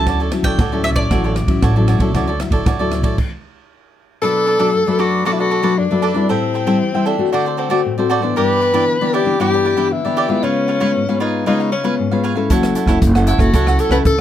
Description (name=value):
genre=samba and choro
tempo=116 BPM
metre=4/4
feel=straight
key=D major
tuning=A4 = 439 Hz
part: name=bowl-back mandolin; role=melody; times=0.0-3.7 s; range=D5 to A5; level=-23 LUFS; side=right 3 dB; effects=none
part: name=cavaquinho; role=accompaniment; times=0.0-14.0 s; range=D4 to G5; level=-21 LUFS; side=right 6 dB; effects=none
part: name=nylon-string guitar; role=accompaniment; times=0.0-14.2 s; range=F#2 to A4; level=-19 LUFS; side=left 4 dB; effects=none
part: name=upright bass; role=bass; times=0.0-3.1, 12.5-14.2 s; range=F#1 to D2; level=-17 LUFS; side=right 1 dB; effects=none
part: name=open jazz drum kit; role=drums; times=0.1-3.3, 12.5-14.2 s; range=crash cymbal, hi-hat, kick drum, ride cymbal, rim click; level=-19 LUFS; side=right 1 dB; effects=none
part: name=breathy tenor saxophone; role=second line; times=4.2-14.2 s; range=C4 to B4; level=-18 LUFS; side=left 3 dB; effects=none
room=light reverb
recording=none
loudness=-14 LUFS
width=side -11 dB against mid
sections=0.0-4.2 A section; 4.2-14.2 B section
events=stop 3.2-4.2; tenor saxophone solo 4.2-14.2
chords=0.1 Dmaj9; 4.2 Bm7; 6.3 Am7; 7.3 D7; 8.4 G6; 10.4 C#7; 12.5 F#m7